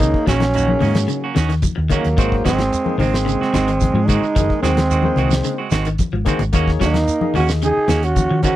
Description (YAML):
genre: afrobeat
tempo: 110 BPM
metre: 4/4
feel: straight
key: Eb dorian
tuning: A4 = 441 Hz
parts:
  - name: growling trombone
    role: melody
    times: 0.0-8.6 s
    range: Bb3 to Ab4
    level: -20 LUFS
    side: right 2 dB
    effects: none
  - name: raspy alto saxophone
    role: second line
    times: 0.0-8.6 s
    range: Gb3 to Eb4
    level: -26 LUFS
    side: right 5 dB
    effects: none
  - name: barky tine electric piano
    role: accompaniment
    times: 0.0-8.6 s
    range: Bb3 to Eb5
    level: -26 LUFS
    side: left 13 dB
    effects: none
  - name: clean electric guitar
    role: arpeggios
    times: 0.0-8.6 s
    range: Db3 to Gb3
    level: -27 LUFS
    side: left 4 dB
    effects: none
  - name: hollow-body short-scale fingered electric bass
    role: bass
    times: 0.0-8.5 s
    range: Gb1 to Eb3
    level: -20 LUFS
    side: equal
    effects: none
  - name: damped 70s drum kit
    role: drums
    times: 0.0-8.6 s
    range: hi-hat, kick drum, snare drum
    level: -21 LUFS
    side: equal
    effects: none
  - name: congas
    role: percussion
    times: 0.0-8.6 s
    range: none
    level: -24 LUFS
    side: left 4 dB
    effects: none
  - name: shekere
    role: percussion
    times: 0.0-8.6 s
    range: none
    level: -29 LUFS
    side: right 3 dB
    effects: none
  - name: semi-hollow electric guitar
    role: stabs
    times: 0.3-8.6 s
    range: Eb3 to Gb4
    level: -24 LUFS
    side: right 8 dB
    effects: none
room: little or no reverb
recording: dry, close 1970s-style studio recording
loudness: -15 LUFS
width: side -14 dB against mid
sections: 0.0-8.6 A section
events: drum fill 6.0-6.5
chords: 0.0 Ebm7; 2.2 Ab7; 6.5 Ebm7